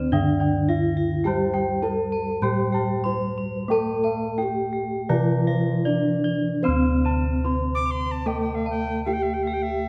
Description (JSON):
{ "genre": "Javanese gamelan", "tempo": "74-106 BPM", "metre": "4/4", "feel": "straight", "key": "D slendro", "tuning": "A4 = 442 Hz", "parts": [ { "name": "gamelan-type bronze metallophone", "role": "melody", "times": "0.0-9.9 s", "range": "C4-40c to C5-40c", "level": "-28 LUFS", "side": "equal", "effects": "tape echo" }, { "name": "gamelan-type bronze metallophone", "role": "accompaniment", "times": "0.0-9.9 s", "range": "D3 to C4-40c", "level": "-30 LUFS", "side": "equal", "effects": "none" }, { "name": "gamelan-type bronze metallophone", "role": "arpeggios", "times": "0.0-9.9 s", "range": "C5-40c to C6-40c", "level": "-35 LUFS", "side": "equal", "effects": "none" }, { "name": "gamelan-type bossed gongs", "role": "bass", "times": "0.0-9.9 s", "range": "D2 to C5-40c", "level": "-29 LUFS", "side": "equal", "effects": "none" }, { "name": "gamelan-type bossed gongs", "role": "arpeggios", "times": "0.1-9.5 s", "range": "C5-40c to C6-40c", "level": "-35 LUFS", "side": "equal", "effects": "none" }, { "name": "alto recorder", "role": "second line", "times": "7.7-9.9 s", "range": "E5+25c to D6", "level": "-32 LUFS", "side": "equal", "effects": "none" } ], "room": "moderate recital hall reverb, RT60 1.6 s", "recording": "faint mains hum", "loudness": "-24 LUFS", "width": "mono", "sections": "0.0-6.6 A section; 6.6-9.9 B section", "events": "none", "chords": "none" }